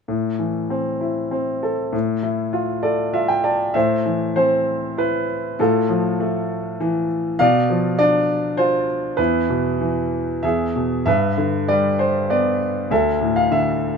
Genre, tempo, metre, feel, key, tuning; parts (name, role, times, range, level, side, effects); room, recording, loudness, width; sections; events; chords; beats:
classical, lyrical solo piano; 98 BPM; 3/4; rubato; A minor; A4 = 445 Hz
clear grand piano; solo; 0.1-14.0 s; D2 to A5; -18 LUFS; equal
light reverb; -18 LUFS; side -6 dB against mid
0.1-3.7 A section; 3.7-14.0 B section
grand piano fill 2.5-3.7
0.1 Am; 1.9 Dmadd9/A; 3.7 Amadd9; 5.6 Fmaj7/A; 7.4 Bdim; 9.2 E5; 10.4 E; 11.1 G; 12.9 Dsus2
| 0.09 0.71 1.33 | 1.93 2.53 3.13 | 3.75 4.37 4.98 | 5.59 6.20 6.80 | 7.39 7.99 8.58 | 9.19 9.80 10.43 | 11.06 11.68 12.30 | 12.91 13.50